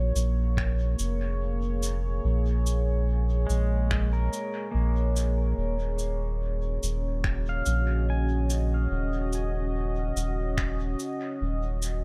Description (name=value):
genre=ambient dub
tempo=72 BPM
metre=4/4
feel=swing 56% on 16ths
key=Eb minor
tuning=A4 = 441 Hz
part: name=deep dark ambient pad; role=sustained chords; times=0.0-12.0 s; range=Bb3 to Eb5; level=-36 LUFS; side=equal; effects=chorus, built-in reverb
part: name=soft dub sub bass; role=bass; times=0.0-12.0 s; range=Eb1 to Bb1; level=-28 LUFS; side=equal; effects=tube saturation
part: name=cabasa and finger snaps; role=drums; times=0.2-12.0 s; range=none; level=-38 LUFS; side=equal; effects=dub echo
part: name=electronic kick drum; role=drums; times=0.6-10.8 s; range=none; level=-33 LUFS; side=equal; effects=none
part: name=pedal steel guitar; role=arpeggios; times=3.5-11.5 s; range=Ab3 to Ab5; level=-40 LUFS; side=equal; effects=analog delay
room=small room ambience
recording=echo-heavy mix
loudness=-28 LUFS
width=mono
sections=0.0-12.0 A section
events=none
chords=0.0 Bbm7; 5.6 Ebm9